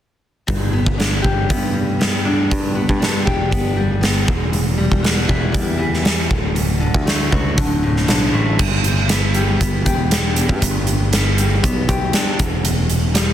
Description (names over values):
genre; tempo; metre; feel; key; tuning
quiet-loud alternative rock; 118 BPM; 4/4; straight; unclear; A4 = 440 Hz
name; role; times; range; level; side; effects
fingerpicked steel-string acoustic guitar; arpeggios; 0.5-13.3 s; D2 to G4; -22 LUFS; left 2 dB; none
picked electric bass; bass; 0.5-13.3 s; D1 to G2; -20 LUFS; equal; none
huge arena drum kit; drums; 0.5-13.3 s; crash cymbal, hi-hat, kick drum, snare drum; -18 LUFS; equal; soft clipping on kick
room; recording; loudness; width
light reverb; dense, heavily limited modern master; -15 LUFS; side -11 dB against mid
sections
0.5-8.6 A section; 8.6-13.3 B section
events
none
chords
0.5 G; 4.3 Em; 6.3 D; 8.6 G; 12.4 Em